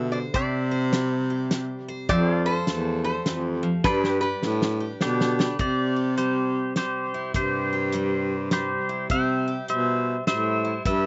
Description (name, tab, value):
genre	honky-tonk and classic country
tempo	103 BPM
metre	3/4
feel	swing 63% on 8ths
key	C major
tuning	A4 = 435 Hz
part	lap resonator guitar	second line	0.0-5.3 s	B4 to E5	-31 LUFS	equal	slapback echo
part	picked steel-string acoustic guitar	accompaniment	0.0-11.1 s	C3 to C5	-34 LUFS	equal	none
part	pedal steel guitar	sustained chords	0.0-5.6 s	G4 to F5	-38 LUFS	equal	subtle chorus
part	mellow baritone saxophone	bass	0.0-11.1 s	E2 to C3	-28 LUFS	equal	none
part	natural country drum kit	drums	0.3-11.0 s	hi-hat, kick drum, snare drum	-29 LUFS	equal	none
part	pedal steel guitar	melody	5.0-11.1 s	D4 to G5	-29 LUFS	equal	none
room	little or no reverb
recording	recorded outdoors, with no room sound, nothing above 7.9 kHz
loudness	-25 LUFS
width	mono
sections	0.0-5.6 A section; 5.6-11.1 B section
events	resonator guitar played with a steel bar solo 0.0-5.6; drum fill 3.8-5.6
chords	0.3 C; 2.1 Fadd9; 3.8 G; 5.6 C